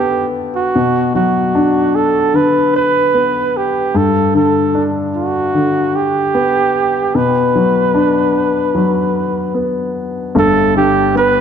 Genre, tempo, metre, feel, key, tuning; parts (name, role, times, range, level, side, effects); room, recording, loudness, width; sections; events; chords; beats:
pop; 75 BPM; 4/4; straight; B minor; A4 = 440 Hz
warm flugelhorn; melody; 0.0-11.4 s; F#4 to B4; -14 LUFS; right 3 dB
warm grand piano; accompaniment; 0.0-11.4 s; G1 to D4; -15 LUFS; left 3 dB
moderate scoring stage reverb, RT60 1.8 s; dark, warm production; -12 LUFS; side -8 dB against mid
0.0-10.4 A section; 10.4-11.4 B section
0.0 G; 0.8 Bm; 4.0 G; 7.2 Bm; 10.4 G
| 0.75 1.55 2.35 3.15 | 3.95 4.75 5.55 6.35 | 7.15 7.95 8.75 9.55 | 10.35 11.15